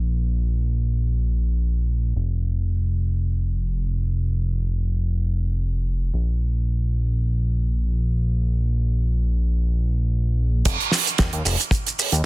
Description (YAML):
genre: nu-disco, nu disco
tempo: free time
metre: none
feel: none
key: unclear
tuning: A4 = 440 Hz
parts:
  - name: fat analog bass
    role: bass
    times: 0.0-12.2 s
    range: F1 to Eb2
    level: -20 LUFS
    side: equal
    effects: none
  - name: damped 70s drum kit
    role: drums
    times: 10.7-12.2 s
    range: crash cymbal, hi-hat, shaker, snare drum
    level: -20 LUFS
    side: right 4 dB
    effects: studio reverb
  - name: kick drum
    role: drums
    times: 10.7-11.8 s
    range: none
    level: -22 LUFS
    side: equal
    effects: studio reverb
room: little or no reverb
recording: dense, heavily limited modern master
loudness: -20 LUFS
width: side -20 dB against mid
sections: 0.0-10.7 A section; 10.7-12.3 B section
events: drop 10.7-12.3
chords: none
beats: free time